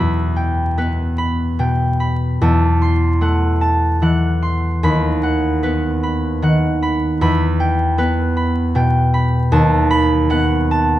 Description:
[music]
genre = classical, solo harp piece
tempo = 50 BPM (dotted quarters)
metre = 6/8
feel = rubato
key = E minor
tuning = A4 = 440 Hz
[part]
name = concert harp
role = solo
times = 0.0-11.0 s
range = D#2 to C6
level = -14 LUFS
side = equal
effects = none
[sound]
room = moderate recital hall reverb, RT60 1.4 s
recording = close, detailed microphones, vinyl crackle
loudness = -14 LUFS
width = side -14 dB against mid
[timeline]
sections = 0.0-11.0 A section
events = none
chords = 0.0 Em; 2.4 F#m7b5/E; 4.8 B/D#; 7.2 Em; 9.5 B7/D#

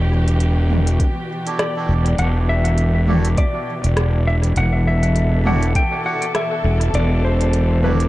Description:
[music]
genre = ambient dub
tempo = 101 BPM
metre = 4/4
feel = swing 57% on 16ths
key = E minor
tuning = A4 = 440 Hz
[part]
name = dark chamber string section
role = sustained chords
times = 0.0-8.1 s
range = B2 to A4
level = -25 LUFS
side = left 1 dB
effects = none
[part]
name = fuzz fingered electric bass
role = bass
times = 0.0-8.1 s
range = E1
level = -16 LUFS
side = equal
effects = overdrive
[part]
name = organic electronic drum kit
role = drums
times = 0.3-8.1 s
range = hi-hat, rim click, toms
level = -26 LUFS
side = equal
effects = dub echo
[part]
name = electronic kick drum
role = drums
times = 1.0-5.9 s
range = none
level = -18 LUFS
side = equal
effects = none
[part]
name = melodica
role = stabs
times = 1.5-8.0 s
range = D4 to A4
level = -30 LUFS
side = right 3 dB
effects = dub echo
[part]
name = clean lap steel guitar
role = melody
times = 1.6-7.9 s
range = B4 to G5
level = -24 LUFS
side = left 1 dB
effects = dub echo
[sound]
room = light reverb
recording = dark, warm production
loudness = -16 LUFS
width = side -17 dB against mid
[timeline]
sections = 0.0-8.1 A section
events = none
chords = 0.0 Em11

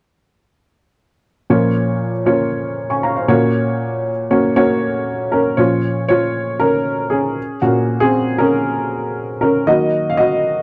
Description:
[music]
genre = pop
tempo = 118 BPM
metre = 4/4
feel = straight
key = Bb minor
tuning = A4 = 439 Hz
[part]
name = warm upright piano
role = accompaniment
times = 1.5-10.6 s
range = Bb2 to Db6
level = -17 LUFS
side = equal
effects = none
[sound]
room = moderate booth ambience, RT60 0.2 s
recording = dry, close 1970s-style studio recording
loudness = -17 LUFS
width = mono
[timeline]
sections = 1.5-5.6 A section; 5.6-10.6 B section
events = upright piano solo 5.6-10.6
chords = 1.5 Bbm; 3.3 Gb/Bb; 5.6 Bbm; 7.4 Bbm9; 9.7 Ebm

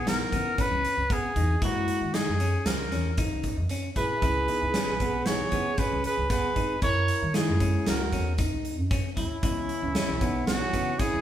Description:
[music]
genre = progressive instrumental, band music in an uneven meter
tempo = 115 BPM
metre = 5/4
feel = straight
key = C# dorian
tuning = A4 = 440 Hz
[part]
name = clear trumpet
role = melody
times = 0.0-11.2 s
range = E4 to C#5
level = -29 LUFS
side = equal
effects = none
[part]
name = clean electric guitar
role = arpeggios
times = 0.0-11.2 s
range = B3 to E4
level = -34 LUFS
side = left 2 dB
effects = none
[part]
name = upright bass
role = bass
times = 0.0-11.2 s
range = G#1 to D#3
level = -30 LUFS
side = equal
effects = none
[part]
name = vintage hollow-body jazz guitar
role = accompaniment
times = 0.1-10.9 s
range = E3 to D#5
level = -34 LUFS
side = left 4 dB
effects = none
[part]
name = big rock drum kit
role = drums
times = 0.1-11.1 s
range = hi-hat, kick drum, snare drum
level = -30 LUFS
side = right 1 dB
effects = none
[part]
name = breathy flugelhorn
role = second line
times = 4.0-11.2 s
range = C#4 to A#4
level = -34 LUFS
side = right 4 dB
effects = none
[sound]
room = wet large studio reverb, RT60 0.9 s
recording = band playing live in one room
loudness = -24 LUFS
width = side -11 dB against mid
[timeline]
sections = 0.0-11.2 A section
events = none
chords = 0.0 C#m7; 1.6 F#7; 4.2 C#m7; 6.8 F#7; 9.4 C#m7

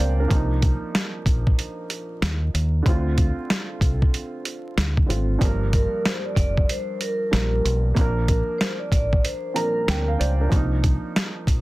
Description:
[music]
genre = hip hop, boom-bap hip-hop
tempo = 94 BPM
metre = 4/4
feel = swing 62% on 16ths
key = G minor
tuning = A4 = 437 Hz
[part]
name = dark upright piano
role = accompaniment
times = 0.0-11.6 s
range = G2 to Bb5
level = -28 LUFS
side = right 2 dB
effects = high-pass filter, low-pass filter
[part]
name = deep dub fingered electric bass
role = bass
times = 0.0-11.6 s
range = F1 to Eb2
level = -22 LUFS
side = equal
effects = none
[part]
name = boom bap sampler-style drum kit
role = drums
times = 0.0-11.6 s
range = hi-hat, kick drum, snare drum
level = -21 LUFS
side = equal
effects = none
[part]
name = vibraphone with soft mallets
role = melody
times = 5.7-10.1 s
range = Bb4 to D5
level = -27 LUFS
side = equal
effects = high-pass filter, low-pass filter, digital delay
[sound]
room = little or no reverb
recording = dense, heavily limited modern master, vinyl crackle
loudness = -20 LUFS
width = side -19 dB against mid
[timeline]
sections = 0.0-11.6 A section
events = none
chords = 0.3 F7sus4; 2.9 Dm7; 5.4 Gm7; 8.0 Bb; 10.5 F7sus4

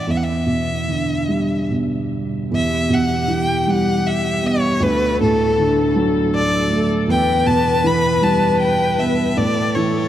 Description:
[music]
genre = celtic folk, Celtic slow air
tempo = 78 BPM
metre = 3/4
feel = rubato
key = E dorian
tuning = A4 = 441 Hz
[part]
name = clear violin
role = melody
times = 0.0-10.1 s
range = A4 to B5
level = -21 LUFS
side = left 1 dB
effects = none
[part]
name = felt-muted upright piano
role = accompaniment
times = 0.0-10.1 s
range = D2 to B3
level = -18 LUFS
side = right 2 dB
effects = none
[part]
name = dark viola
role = second line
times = 2.5-10.1 s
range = G4 to B4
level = -23 LUFS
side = left 5 dB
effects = none
[sound]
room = wet cathedral reverb, RT60 6.1 s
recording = dark, warm production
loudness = -16 LUFS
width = side -11 dB against mid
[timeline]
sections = 0.0-2.5 A section; 2.5-10.1 A section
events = none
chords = 0.1 Em7; 2.5 Em; 4.8 D; 7.1 Em; 9.4 A

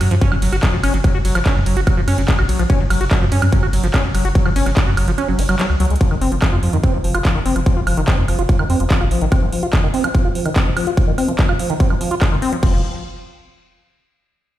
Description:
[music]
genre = psychedelic trance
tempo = 145 BPM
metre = 4/4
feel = straight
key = unclear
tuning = A4 = 440 Hz
[part]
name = liquid acid bass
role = riff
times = 0.0-12.8 s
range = Eb3 to Gb4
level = -21 LUFS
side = moving between left 4 dB and right 4 dB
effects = chorus, auto-pan, sidechain pumping, ping-pong delay
[part]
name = round analog bass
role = bass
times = 0.0-9.3, 12.6-12.8 s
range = F1 to Gb2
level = -18 LUFS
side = equal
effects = none
[part]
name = big-room dance drum kit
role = drums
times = 0.0-12.7 s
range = crash cymbal, handclaps, hi-hat, ride cymbal, woodblock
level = -24 LUFS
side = right 2 dB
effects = studio reverb
[part]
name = electronic kick drum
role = drums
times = 0.2-12.7 s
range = none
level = -16 LUFS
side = equal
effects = studio reverb
[sound]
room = light reverb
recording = played on a big sound system in a bare room, stone room reverb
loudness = -14 LUFS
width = side -13 dB against mid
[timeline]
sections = 0.0-6.0 A section; 6.0-12.6 B section; 12.6-14.3 C section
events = drop 0.0-6.0; kick drops out 5.2-6.0; drum fill 5.8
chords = 0.0 Gb5; 6.0 F5; 12.6 N.C.

